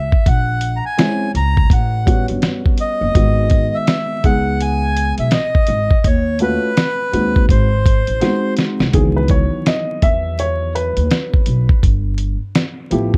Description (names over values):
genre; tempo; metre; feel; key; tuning
hip hop, jazz-hop; 83 BPM; 4/4; swing 61% on 16ths; C# minor; A4 = 441 Hz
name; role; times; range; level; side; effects
accordion; melody; 0.0-8.5 s; B4 to A#5; -23 LUFS; equal; slapback echo
upright bass; bass; 0.0-13.2 s; F#1 to E2; -21 LUFS; equal; none
lo-fi sampler-style drum kit; drums; 0.1-13.2 s; hi-hat, kick drum, snare drum; -18 LUFS; equal; vintage 12-bit sampler grit
dark baby grand piano; accompaniment; 1.0-13.2 s; D#3 to E5; -22 LUFS; equal; none
room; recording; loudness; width
small room ambience; dark, warm production, vinyl crackle; -16 LUFS; mono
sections
0.0-8.9 A section; 8.9-13.2 B section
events
drum fill 8.2-8.9; grand piano solo 8.9-13.2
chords
0.3 A#m7b5; 1.7 A13; 3.2 G#m7; 6.0 D#m7b5; 7.5 G#7; 8.9 C#m11; 11.8 G13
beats
| 0.26 0.98 1.71 2.43 | 3.15 3.87 4.60 5.32 | 6.04 6.77 7.49 8.21 | 8.94 9.66 10.38 11.10 | 11.83 12.55